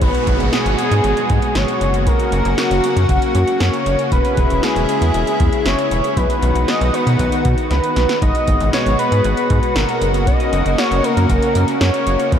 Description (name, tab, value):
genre	synth-pop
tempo	117 BPM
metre	4/4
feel	straight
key	unclear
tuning	A4 = 440 Hz
part	octave-doubled lead	melody	0.0-12.4 s	F#4 to D#5	-19 LUFS	equal	chorus, tape echo
part	lush unison pad	sustained chords	0.0-12.4 s	B2 to F#4	-20 LUFS	left 1 dB	chorus
part	rubbery square bass	bass	0.0-12.4 s	E1 to B2	-18 LUFS	equal	none
part	electro analog drum machine	drums	0.0-12.4 s	hi-hat, kick drum, snare drum	-20 LUFS	equal	none
part	downlifter	sound effects	0.0-4.1 s	none	-29 LUFS	right 1 dB	none
room	moderate huge ambient reverb, RT60 9.3 s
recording	dreamy mix soaked in reverb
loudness	-14 LUFS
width	side -8 dB against mid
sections	0.0-12.4 A section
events	drum fill 7.7-8.2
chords	0.0 G#m7; 1.8 F#; 4.1 E6; 6.2 B; 8.2 G#m7; 10.0 F#